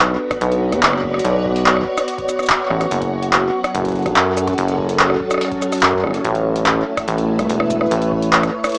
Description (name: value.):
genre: IDM.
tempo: 144 BPM.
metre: 4/4.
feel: straight.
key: unclear.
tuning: A4 = 445 Hz.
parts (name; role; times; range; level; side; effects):
soft string machine; sustained chords; 0.0-8.8 s; F#3 to D5; -22 LUFS; equal; ensemble chorus, cassette tape.
rubbery square bass; bass; 0.0-8.5 s; E1 to F#2; -22 LUFS; equal; tube saturation.
booming analog drum machine; drums; 0.3-8.8 s; cabasa, handclaps, hi-hat, rim click; -20 LUFS; equal; cassette tape, tape echo.
electronic kick drum; drums; 0.3-8.5 s; none; -39 LUFS; equal; cassette tape.
room: moderate booth ambience, RT60 0.2 s.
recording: home recording on cassette, small speaker sound.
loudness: -17 LUFS.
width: mono.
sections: 0.0-8.8 A section.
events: none.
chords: 0.0 Bm7; 2.9 F#m; 6.2 A69.